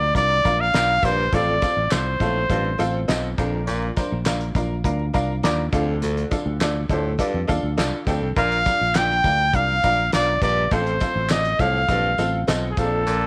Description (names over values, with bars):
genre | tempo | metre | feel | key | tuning
uptempo 1960s-style soul | 102 BPM | 4/4 | straight | Bb major | A4 = 440 Hz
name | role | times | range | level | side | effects
breathy trumpet | melody | 0.0-3.1, 8.4-13.3 s | Ab4 to G5 | -23 LUFS | equal | none
vibraphone with soft mallets | second line | 0.0-3.1, 8.4-13.3 s | Ab4 to G5 | -36 LUFS | equal | none
clear upright piano | accompaniment | 0.0-13.3 s | A2 to G5 | -29 LUFS | equal | none
fingered electric bass | bass | 0.0-13.3 s | A1 to F2 | -28 LUFS | equal | none
cloth-damped thuddy drum kit | drums | 0.1-13.2 s | hi-hat, kick drum, snare drum | -28 LUFS | equal | none
congas | percussion | 0.2-13.3 s | none | -41 LUFS | equal | none
tambourine and handclaps | percussion | 0.2-13.2 s | none | -36 LUFS | equal | none
warm baritone saxophone | riff | 1.0-13.3 s | D2 to Bb2 | -30 LUFS | equal | none
room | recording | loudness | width
small room ambience | none | -21 LUFS | mono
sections
0.0-13.3 A section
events
none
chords
0.0 Bb; 1.3 F/A; 3.4 Bb; 5.7 Dm; 8.4 Bb; 10.7 F/A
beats
0.16 0.74 | 1.33 1.91 2.50 3.08 | 3.67 4.26 4.85 5.43 | 6.02 6.61 7.20 7.78 | 8.37 8.96 9.55 10.13 | 10.72 11.31 11.90 12.48 | 13.07